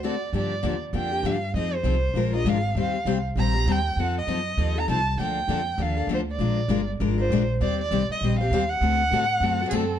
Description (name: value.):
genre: acoustic string swing (jazz manouche).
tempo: 198 BPM.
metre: 4/4.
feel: swing 60% on 8ths.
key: G minor.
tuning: A4 = 439 Hz.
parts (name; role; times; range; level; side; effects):
dark violin; melody; 0.0-10.0 s; Ab4 to Bb5; -27 LUFS; right 2 dB; none.
picked steel-string acoustic guitar; second line; 0.0-0.2, 9.7-10.0 s; Bb3 to F#4; -35 LUFS; right 7 dB; none.
picked steel-string acoustic guitar; accompaniment; 0.0-9.8 s; D3 to C5; -27 LUFS; left 6 dB; none.
upright bass; bass; 0.0-10.0 s; G1 to A2; -26 LUFS; right 1 dB; none.
room: moderate studio reverb, RT60 0.9 s.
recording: dark, warm production.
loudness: -22 LUFS.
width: side -10 dB against mid.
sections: 0.3-10.0 A section.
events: none.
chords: 0.3 Gm7; 1.5 Fm7; 2.1 Bb7; 2.8 Eb69; 4.0 F7b9; 5.2 Bbmaj7; 6.4 Bb7; 7.6 Eb69; 8.8 D7.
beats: 0.02 | 0.33 0.63 0.93 1.24 | 1.54 1.84 2.15 2.45 | 2.75 3.06 3.36 3.66 | 3.96 4.27 4.57 4.87 | 5.17 5.48 5.78 6.08 | 6.39 6.69 6.99 7.29 | 7.60 7.90 8.20 8.50 | 8.81 9.11 9.41 9.71.